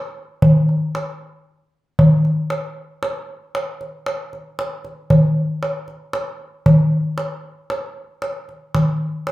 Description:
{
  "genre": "greek folk",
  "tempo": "116 BPM (eighths)",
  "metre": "9/8",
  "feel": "straight",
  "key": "none",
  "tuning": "none",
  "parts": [
    { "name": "darbuka", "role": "percussion", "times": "0.4-9.3 s", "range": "none", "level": "-16 LUFS", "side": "equal", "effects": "none" }
  ],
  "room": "wet large studio reverb, RT60 0.8 s",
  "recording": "band playing live in one room",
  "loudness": "-17 LUFS",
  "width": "side -17 dB against mid",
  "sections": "0.0-6.7 A section; 6.7-9.3 B section",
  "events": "none",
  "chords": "none"
}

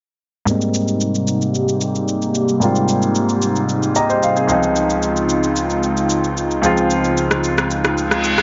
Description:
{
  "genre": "amapiano",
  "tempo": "112 BPM",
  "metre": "4/4",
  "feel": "straight",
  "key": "Ab major",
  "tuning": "A4 = 439 Hz",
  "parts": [
    { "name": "clear grand piano", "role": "accompaniment", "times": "0.5-8.4 s", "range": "Db2 to Bb5", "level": "-20 LUFS", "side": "equal", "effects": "low-pass filter" },
    { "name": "hollow soft pad", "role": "sustained chords", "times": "0.5-8.4 s", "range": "C3 to G4", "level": "-22 LUFS", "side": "equal", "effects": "chorus, low-pass filter" },
    { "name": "electronic shaker and rim click", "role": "drums", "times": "0.5-8.4 s", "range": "none", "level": "-25 LUFS", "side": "equal", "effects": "none" },
    { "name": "reverse cymbal", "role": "sound effects", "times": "8.2-8.4 s", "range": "none", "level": "-21 LUFS", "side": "equal", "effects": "none" }
  ],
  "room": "moderate spring reverb, RT60 2.3 s",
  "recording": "nothing above 7.5 kHz",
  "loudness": "-18 LUFS",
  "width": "mono",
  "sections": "0.5-8.4 A section",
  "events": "filter sweep 0.5-8.4; grand piano fill 3.7-4.8; reverse cymbal 8.2",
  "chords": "0.5 Abmaj9; 4.5 Dbmaj9"
}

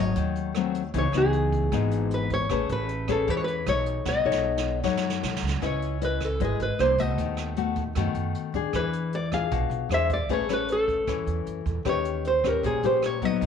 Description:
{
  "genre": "bossa nova",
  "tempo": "154 BPM",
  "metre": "4/4",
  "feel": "straight",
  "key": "unclear",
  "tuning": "A4 = 440 Hz",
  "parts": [
    { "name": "nylon-string guitar", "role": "melody", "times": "0.0-13.5 s", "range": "G#4 to F5", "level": "-27 LUFS", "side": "right 1 dB", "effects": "slapback echo" },
    { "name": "nylon-string guitar", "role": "accompaniment", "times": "0.0-13.5 s", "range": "G#2 to D#5", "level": "-28 LUFS", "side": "left 9 dB", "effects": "none" },
    { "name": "upright bass", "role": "bass", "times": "0.0-13.5 s", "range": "G#1 to F#2", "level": "-30 LUFS", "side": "right 2 dB", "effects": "none" },
    { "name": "jazz brush drum kit", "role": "drums", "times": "0.2-13.5 s", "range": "hi-hat, kick drum, rim click, snare drum", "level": "-36 LUFS", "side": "right 7 dB", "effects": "none" }
  ],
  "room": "light reverb, studio reverb",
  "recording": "1960s-style stereo with parts hard left and right, tape saturation",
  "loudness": "-23 LUFS",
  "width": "side -7 dB against mid",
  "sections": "0.0-5.6 A section; 5.6-13.5 B section",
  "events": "drum fill 4.1-5.6",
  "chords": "0.0 G#7b9; 0.9 C#m9; 2.5 Amaj9; 3.7 B9; 5.6 C#m9; 6.8 C9; 7.2 B7/D#; 8.7 E7b9; 9.9 Eaug7; 10.3 Aadd9; 11.9 D#7b13"
}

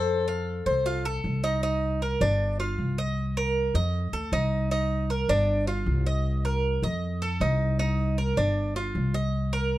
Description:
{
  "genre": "latin, Cuban son and guajira",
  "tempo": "156 BPM",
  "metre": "4/4",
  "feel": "straight",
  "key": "unclear",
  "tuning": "A4 = 444 Hz",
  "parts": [
    { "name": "Cuban tres", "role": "melody", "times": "0.0-1.2 s", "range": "A4", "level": "-30 LUFS", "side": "left 8 dB", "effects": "none" },
    { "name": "Cuban tres", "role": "arpeggios", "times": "0.0-9.8 s", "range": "D4 to F5", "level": "-28 LUFS", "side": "right 2 dB", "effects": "none" },
    { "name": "upright bass", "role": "bass", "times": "0.0-9.8 s", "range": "G1 to F2", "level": "-26 LUFS", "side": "equal", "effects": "none" }
  ],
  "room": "light reverb",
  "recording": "dark, warm production",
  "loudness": "-24 LUFS",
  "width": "side -15 dB against mid",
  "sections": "0.0-1.6 A section; 1.6-9.8 B section",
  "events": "none",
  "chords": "0.1 F; 1.6 Cm7; 2.4 G5; 3.2 Cm7; 3.9 F7; 4.7 Cm7; 5.5 G5; 6.3 Cm7; 7.0 F7; 7.8 Cm7; 8.6 G5"
}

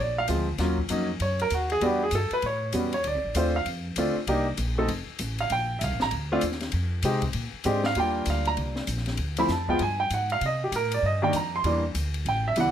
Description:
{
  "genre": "jazz piano trio",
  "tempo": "195 BPM",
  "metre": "4/4",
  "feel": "swing 63% on 8ths",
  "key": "Bb major",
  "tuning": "A4 = 440 Hz",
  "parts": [
    { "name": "warm baby grand piano", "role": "melody", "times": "0.0-12.7 s", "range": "Eb3 to C6", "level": "-25 LUFS", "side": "right 1 dB", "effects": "none" },
    { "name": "upright bass", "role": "bass", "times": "0.0-12.7 s", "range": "F1 to C3", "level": "-29 LUFS", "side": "equal", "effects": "none" },
    { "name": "open jazz drum kit", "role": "drums", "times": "0.3-12.7 s", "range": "hi-hat, kick drum, ride cymbal, snare drum", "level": "-35 LUFS", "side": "left 4 dB", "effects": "none" }
  ],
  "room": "light reverb",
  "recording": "none",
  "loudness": "-24 LUFS",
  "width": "side -10 dB against mid",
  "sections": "0.0-8.0 A section; 8.0-12.7 A section",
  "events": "grand piano solo 0.0-12.7",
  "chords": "0.0 Bb7; 0.6 Ebm7; 1.8 Em7; 2.4 A7; 3.0 Dm7; 4.3 Cm7; 4.9 F; 5.5 Bb; 6.7 Fm7; 7.3 Bb13; 8.0 Ebmaj9; 9.2 Dm; 9.8 Fmadd9/G (rootless); 10.4 Cm7; 11.6 Em7b5"
}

